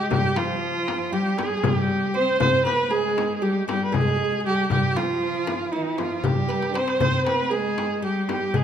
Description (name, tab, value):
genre	Turkish makam ensemble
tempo	235 BPM (eighths)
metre	9/8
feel	straight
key	G makam hicaz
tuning	A4 = 437 Hz
part	bright kamancheh	melody	0.0-8.6 s	E4-37c to C5	-24 LUFS	right 3 dB	none
part	oud	second line	0.0-8.6 s	E4-40c to C5	-30 LUFS	right 1 dB	none
part	rich studio cello section	second line	0.0-8.6 s	E3-40c to D4	-27 LUFS	left 1 dB	none
part	darbuka	percussion	0.1-8.6 s	none	-28 LUFS	left 2 dB	none
part	frame drum	percussion	0.1-8.6 s	none	-30 LUFS	left 6 dB	none
room	wet recital hall reverb, RT60 1.4 s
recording	none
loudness	-21 LUFS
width	side -8 dB against mid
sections	0.0-8.6 A section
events	drum fill 6.5-7.0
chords	none